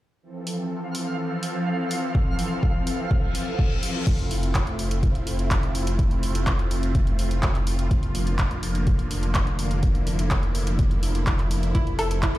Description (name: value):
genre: progressive house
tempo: 125 BPM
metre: 4/4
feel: straight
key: F major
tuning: A4 = 443 Hz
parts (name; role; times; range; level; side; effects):
- supersaw pad; sustained chords; 0.2-12.4 s; C3 to A4; -28 LUFS; equal; phaser, sidechain pumping
- twinkling granular texture; texture; 0.6-4.1 s; F5; -36 LUFS; right 2 dB; built-in reverb, sidechain pumping
- deep house drum kit; drums; 0.5-12.4 s; crash cymbal, handclaps, hi-hat, woodblock; -31 LUFS; equal; overdrive
- electronic kick drum; drums; 2.1-12.3 s; none; -23 LUFS; equal; none
- reverse cymbal; sound effects; 3.3-4.1 s; none; -37 LUFS; left 4 dB; none
- round analog bass; bass; 4.1-12.4 s; F1; -26 LUFS; equal; sidechain pumping
- analog pluck; arpeggios; 11.7-12.3 s; E4 to A4; -28 LUFS; equal; chorus, sidechain pumping, ping-pong delay
room: little or no reverb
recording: played on a big sound system in a bare room, large studio reverb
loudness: -21 LUFS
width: side -16 dB against mid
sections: 0.2-4.1 A section; 4.1-12.4 B section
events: reverse cymbal 3.3-4.1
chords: 0.2 Fmaj7; 7.9 Bb/F; 11.7 Fmaj7